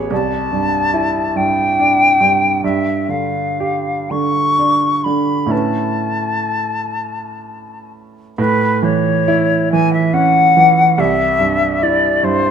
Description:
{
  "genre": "classical, impressionist duo for flute and grand piano",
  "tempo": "39-49 BPM (dotted quarters)",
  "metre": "6/8",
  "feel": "rubato",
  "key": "unclear",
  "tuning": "A4 = 439 Hz",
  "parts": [
    { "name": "clear concert grand piano", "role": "accompaniment", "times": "0.0-12.5 s", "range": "A1 to C#5", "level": "-17 LUFS", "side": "right 4 dB", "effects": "none" },
    { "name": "silver concert flute", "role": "melody", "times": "0.1-12.5 s", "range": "B4 to C#6", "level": "-15 LUFS", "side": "left 3 dB", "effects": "none" }
  ],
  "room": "moderate scoring stage reverb, RT60 2.0 s",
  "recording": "close, detailed microphones",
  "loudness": "-13 LUFS",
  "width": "side -7 dB against mid",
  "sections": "0.0-8.4 A section; 8.4-12.5 B section",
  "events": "none",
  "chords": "0.1 Cadd9; 2.6 G5; 5.5 Aadd9; 8.4 A; 11.0 C",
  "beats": "| 0.11 1.35 | 2.62 4.09 | 5.52 6.95 | 8.38 9.72 | 10.98 12.25"
}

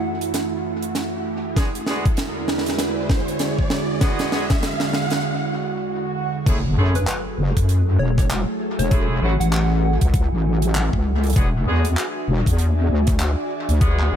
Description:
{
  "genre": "glitch hop",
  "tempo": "98 BPM",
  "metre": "4/4",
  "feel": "swing 60% on 16ths",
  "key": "F# minor",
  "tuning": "A4 = 439 Hz",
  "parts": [
    { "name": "plucky unison lead", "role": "melody", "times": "0.0-0.5, 7.0-10.2 s", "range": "B4 to F#5", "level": "-32 LUFS", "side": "equal", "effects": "dub echo" },
    { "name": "warbly tape-like pad", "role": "sustained chords", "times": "0.0-14.2 s", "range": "E2 to A4", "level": "-29 LUFS", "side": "right 2 dB", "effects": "chorus, built-in reverb, sidechain pumping" },
    { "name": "riser, swell and impact", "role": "sound effects", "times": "0.1-8.9 s", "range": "none", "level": "-30 LUFS", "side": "right 1 dB", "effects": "none" },
    { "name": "ethereal airy pad", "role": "texture", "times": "0.0-14.2 s", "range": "A3 to G#5", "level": "-28 LUFS", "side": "right 2 dB", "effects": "ensemble chorus, built-in reverb, sidechain pumping" },
    { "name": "tight funk drum kit", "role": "drums", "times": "0.2-14.1 s", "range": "crash cymbal, handclaps, hi-hat, rim click, snare drum", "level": "-28 LUFS", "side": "right 1 dB", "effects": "studio reverb, dub echo" },
    { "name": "clear horn section", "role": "stabs", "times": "1.6-14.2 s", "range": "F#3 to G#4", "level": "-31 LUFS", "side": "equal", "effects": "sidechain pumping, low-pass filter, dub echo" },
    { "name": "electronic kick drum", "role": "drums", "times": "1.6-14.0 s", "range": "none", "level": "-19 LUFS", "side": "equal", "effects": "studio reverb" },
    { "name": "wobble bass", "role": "bass", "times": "6.5-14.2 s", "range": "E1 to F#2", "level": "-18 LUFS", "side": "equal", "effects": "chorus, tube saturation" }
  ],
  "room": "light reverb, studio reverb",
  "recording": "echo-heavy mix",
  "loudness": "-18 LUFS",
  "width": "side -9 dB against mid",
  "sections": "0.0-6.5 A section; 6.5-14.2 B section",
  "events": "build-up 0.0-6.5; drum fill 0.0-5.2; filter sweep on ambient pad 0.0-6.5; riser 0.1-5.2; break 5.2-6.5; swell 5.2-6.5; drop 6.5-14.2; impact 6.5-8.9",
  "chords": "0.0 F#m7; 1.6 E9; 6.5 F#m9; 11.4 E9",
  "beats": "0.34 0.95 | 1.57 2.18 2.79 3.40 | 4.01 4.63 5.24 5.85 | 6.46 7.08 7.69 8.30 | 8.91 9.53 10.14 10.75 | 11.36 11.97 12.59 13.20 | 13.81"
}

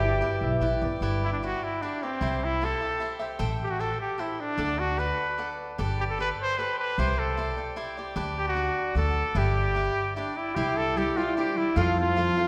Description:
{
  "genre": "mexican folk, mariachi",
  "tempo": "151 BPM",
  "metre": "3/4",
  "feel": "straight",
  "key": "G major",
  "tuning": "A4 = 440 Hz",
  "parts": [
    { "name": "clear trumpet", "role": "melody", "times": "0.0-12.5 s", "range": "C4 to C5", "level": "-31 LUFS", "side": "equal", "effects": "none" },
    { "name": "cavaquinho", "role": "accompaniment", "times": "0.0-12.5 s", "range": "D4 to G5", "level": "-35 LUFS", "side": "equal", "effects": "none" },
    { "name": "concert harp", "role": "arpeggios", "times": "0.0-3.9, 10.6-12.5 s", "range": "F3 to E5", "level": "-32 LUFS", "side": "equal", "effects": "none" },
    { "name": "upright bass", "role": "bass", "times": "0.0-12.3 s", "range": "G1 to F2", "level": "-32 LUFS", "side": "equal", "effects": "none" }
  ],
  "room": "wet scoring stage reverb, RT60 1.8 s",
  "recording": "recorded in a church or concert hall",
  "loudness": "-28 LUFS",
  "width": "mono",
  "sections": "0.0-1.0 A section; 1.0-10.6 A section; 10.6-12.5 B section",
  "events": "none",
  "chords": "0.0 G6; 2.2 C; 3.4 Am7; 4.6 D; 5.8 Gadd9; 7.0 Cadd9; 8.2 G/D; 9.0 D6; 9.4 G6; 10.6 Cadd9; 11.8 F",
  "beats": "0.21 0.62 | 1.02 1.42 1.82 | 2.21 2.61 3.00 | 3.39 3.79 4.19 | 4.58 4.98 5.39 | 5.79 6.19 6.59 | 6.98 7.38 7.77 | 8.16 8.56 8.96 | 9.35 9.75 10.16 | 10.56 10.96 11.36 | 11.76 12.16"
}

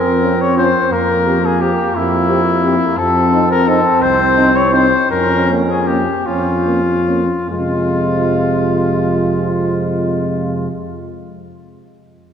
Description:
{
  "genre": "classical, brass quintet",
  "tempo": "47-59 BPM (dotted quarters)",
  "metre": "6/8",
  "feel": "straight",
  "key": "F minor",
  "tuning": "A4 = 440 Hz",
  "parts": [
    { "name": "warm trumpet", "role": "melody", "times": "0.0-10.7 s", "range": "E4 to Db5", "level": "-17 LUFS", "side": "left 4 dB", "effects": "none" },
    { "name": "warm flugelhorn", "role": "second line", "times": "0.0-10.7 s", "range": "Bb3 to F4", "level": "-20 LUFS", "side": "right 4 dB", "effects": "none" },
    { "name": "mellow bass trombone", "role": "bass", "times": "0.0-10.7 s", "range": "C2 to F2", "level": "-18 LUFS", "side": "right 1 dB", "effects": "none" },
    { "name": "mellow French horn", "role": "accompaniment", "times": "0.2-10.7 s", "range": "Ab3 to G4", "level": "-22 LUFS", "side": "left 2 dB", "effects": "none" },
    { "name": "warm trombone", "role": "accompaniment", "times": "0.2-10.7 s", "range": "C3 to Db4", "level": "-23 LUFS", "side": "right 1 dB", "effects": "none" }
  ],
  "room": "wet church reverb, RT60 3.1 s",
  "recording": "dark, warm production",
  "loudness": "-12 LUFS",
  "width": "side -8 dB against mid",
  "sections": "0.0-7.5 A section; 7.5-12.3 B section",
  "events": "slowing down 1.9-7.5",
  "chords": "0.0 Bbmadd9/F; 0.9 C7/F; 3.0 F5; 5.1 Bbm/F; 7.5 Fm",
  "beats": "| 0.90 1.94 | 2.97 4.02 | 5.11 6.26 | 7.50 8.72 | 9.95"
}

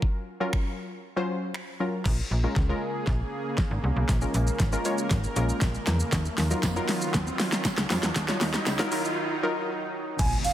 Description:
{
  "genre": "dance-pop",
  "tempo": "118 BPM",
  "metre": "4/4",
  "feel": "straight",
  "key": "Bb minor",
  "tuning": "A4 = 442 Hz",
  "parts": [
    { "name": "glassy wavetable pluck", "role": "accompaniment", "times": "0.0-10.1 s", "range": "Gb3 to Db5", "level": "-31 LUFS", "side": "left 1 dB", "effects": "chorus, sidechain pumping" },
    { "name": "smooth R&B drum kit", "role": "drums", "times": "0.0-10.5 s", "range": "crash cymbal, finger snaps, hi-hat, kick drum, shaker, snare drum", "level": "-27 LUFS", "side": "equal", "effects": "overdrive" },
    { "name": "supersaw pad", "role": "sustained chords", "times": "2.1-10.5 s", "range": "Db3 to Bb4", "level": "-33 LUFS", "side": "right 1 dB", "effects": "sidechain pumping" },
    { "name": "slap-like FM bass", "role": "bass", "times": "2.1-10.3 s", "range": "Ab1 to F2", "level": "-27 LUFS", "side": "equal", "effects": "sidechain pumping" },
    { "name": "riser and impact", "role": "sound effects", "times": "4.7-10.5 s", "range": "none", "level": "-36 LUFS", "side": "equal", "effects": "none" },
    { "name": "tambourine", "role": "percussion", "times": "6.1-10.5 s", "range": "none", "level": "-46 LUFS", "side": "right 11 dB", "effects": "none" },
    { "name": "breathy mellow concert flute", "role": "melody", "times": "10.2-10.5 s", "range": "F5 to Ab5", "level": "-27 LUFS", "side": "right 4 dB", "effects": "none" }
  ],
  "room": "light reverb, digital ambience",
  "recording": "dense, heavily limited modern master, high-pass filter",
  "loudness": "-24 LUFS",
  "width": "side -12 dB against mid",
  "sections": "0.0-2.1 A section; 2.1-10.2 B section",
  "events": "kick muted 1.0-2.1; build-up 2.1-10.2; drum fill 2.1-9.2; filter sweep 2.1-10.2; riser 4.7-10.2; break 9.2-10.2; impact 10.2-10.5",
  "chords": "0.0 Gbmaj7; 2.1 Bbm7; 6.1 Ebmadd9",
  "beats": "| 0.02 0.53 1.04 1.55 | 2.06 2.57 3.07 3.58 | 4.09 4.60 5.11 5.62 | 6.12 6.63 7.14 7.65 | 8.16 8.67 9.18 9.68 | 10.19"
}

